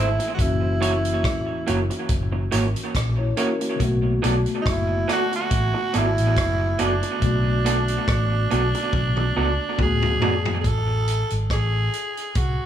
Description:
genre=lovers rock reggae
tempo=70 BPM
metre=4/4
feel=swing 55% on 16ths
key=unclear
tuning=A4 = 440 Hz
part: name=raspy tenor saxophone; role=melody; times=0.0-12.7 s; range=D4 to A4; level=-26 LUFS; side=right 2 dB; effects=tape echo
part: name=mellow tine electric piano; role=accompaniment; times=0.0-10.7 s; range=D3 to C#5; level=-28 LUFS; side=left 4 dB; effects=medium stereo tremolo
part: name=electric guitar through a small old amp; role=stabs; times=0.0-10.5 s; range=A#3 to D5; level=-27 LUFS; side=right 4 dB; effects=tape echo
part: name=vintage muted fingered electric bass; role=bass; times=0.0-12.6 s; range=E1 to D2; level=-23 LUFS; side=equal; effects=none
part: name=vintage drum kit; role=drums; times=0.2-12.6 s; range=hi-hat, kick drum, rim click, toms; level=-26 LUFS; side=equal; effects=none
room=small room ambience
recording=none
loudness=-20 LUFS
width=side -10 dB against mid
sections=0.0-10.6 A section; 10.6-12.7 B section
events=drum fill 8.9-10.6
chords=0.4 F#7; 3.8 Bm7; 10.6 N.C.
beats=| 0.39 1.24 2.09 2.95 | 3.80 4.65 5.51 6.36 | 7.22 8.07 8.93 9.78 | 10.64 11.50 12.35

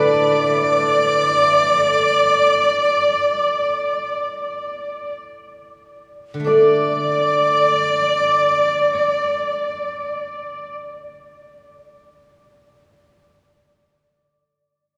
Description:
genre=chinese traditional, Chinese chamber ensemble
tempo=free time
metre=none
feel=none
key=unclear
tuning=A4 = 440 Hz
part: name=bright reedy large dizi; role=melody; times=0.0-10.7 s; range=D6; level=-23 LUFS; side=equal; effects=none
part: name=hammered dulcimer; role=second line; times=0.0-10.7 s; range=A4 to D5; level=-32 LUFS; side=equal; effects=none
part: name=low xiao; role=second line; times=0.0-10.7 s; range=D5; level=-25 LUFS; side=equal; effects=none
part: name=rich cello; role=second line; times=0.0-10.7 s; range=D5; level=-24 LUFS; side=equal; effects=none
part: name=steel-string zither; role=accompaniment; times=0.0-13.0 s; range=D3 to A4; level=-23 LUFS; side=equal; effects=none
room=wet cathedral reverb, RT60 4.9 s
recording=recorded in a church or concert hall, studio ambience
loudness=-18 LUFS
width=mono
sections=0.0-6.5 A section; 6.5-11.7 B section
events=slowing down 0.0-6.5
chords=none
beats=free time

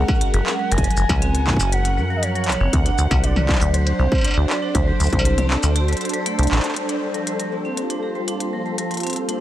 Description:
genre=IDM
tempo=119 BPM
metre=4/4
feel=straight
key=unclear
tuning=A4 = 440 Hz
part: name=warbly nostalgic lead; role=melody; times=0.0-5.8 s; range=C5 to G#5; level=-27 LUFS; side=right 1 dB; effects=analog chorus, digital delay
part: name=soft string machine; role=sustained chords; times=0.0-9.4 s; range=G3 to F#5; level=-26 LUFS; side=left 1 dB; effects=phaser, ensemble chorus
part: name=deep acid bass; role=bass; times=0.0-6.6 s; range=F#1 to F#2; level=-19 LUFS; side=equal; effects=none
part: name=vibraphone with hard mallets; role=arpeggios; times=0.1-9.4 s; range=E#3 to G4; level=-27 LUFS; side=right 3 dB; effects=vintage 12-bit sampler grit, low-pass filter, tape echo
part: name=electronic kick drum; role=drums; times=0.1-5.2 s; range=none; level=-20 LUFS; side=equal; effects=none
part: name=industrial drum kit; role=drums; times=0.1-9.4 s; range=handclaps, hi-hat, shaker, struck metal, toms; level=-26 LUFS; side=left 1 dB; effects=none
part: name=pulsing gated texture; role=texture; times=7.5-9.4 s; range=Bb3 to C6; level=-34 LUFS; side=left 1 dB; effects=chorus, built-in reverb
room=little or no reverb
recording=none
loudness=-18 LUFS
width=side -13 dB against mid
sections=0.0-6.8 A section; 6.8-9.4 B section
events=kick drops out 5.8-6.8; band accent 6.6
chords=0.0 F#add9; 2.7 D7; 6.8 Gm7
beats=0.21 | 0.71 1.22 1.72 2.23 | 2.73 3.24 3.74 4.25 | 4.75 5.25 5.76 6.26 | 6.77 7.27 7.77 8.28 | 8.78 9.29

